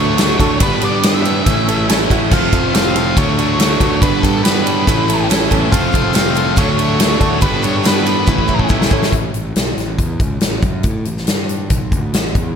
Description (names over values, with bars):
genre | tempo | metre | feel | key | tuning
classic rock | 141 BPM | 4/4 | straight | A mixolydian, A major from 9.1 s | A4 = 440 Hz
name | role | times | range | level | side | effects
octave-fuzz lead guitar | melody | 0.0-8.7 s | A4 to F5 | -21 LUFS | left 1 dB | distortion, slapback echo
barky reed electric piano | accompaniment | 0.0-9.1 s | C4 to A5 | -25 LUFS | right 4 dB | overdrive, fast tremolo, slapback echo
distorted electric guitar | riff | 0.0-9.1 s | G2 to F4 | -20 LUFS | right 10 dB | distortion, slapback echo
tight distorted guitar | riff | 0.0-9.1 s | G2 to F4 | -20 LUFS | left 12 dB | distortion, slapback echo
fuzz fingered electric bass | bass | 0.0-12.6 s | F1 to A2 | -20 LUFS | equal | overdrive
big rock drum kit | drums | 0.2-12.5 s | crash cymbal, hi-hat, kick drum, ride cymbal, snare drum | -16 LUFS | equal | none
tube shaker | percussion | 0.2-9.0 s | none | -35 LUFS | right 5 dB | none
room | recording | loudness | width
light reverb, studio reverb | none | -12 LUFS | side -7 dB against mid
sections
0.0-9.1 A section; 9.1-12.6 B section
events
reed electric piano fill 4.9-5.7, 8.3-9.1; drum fill 8.3-9.1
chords
0.0 D; 0.6 G; 1.5 A; 2.3 F; 3.2 D; 4.0 G; 4.9 A; 5.7 F; 6.6 D; 7.4 G; 8.3 A; 9.1 N.C.; 11.7 A5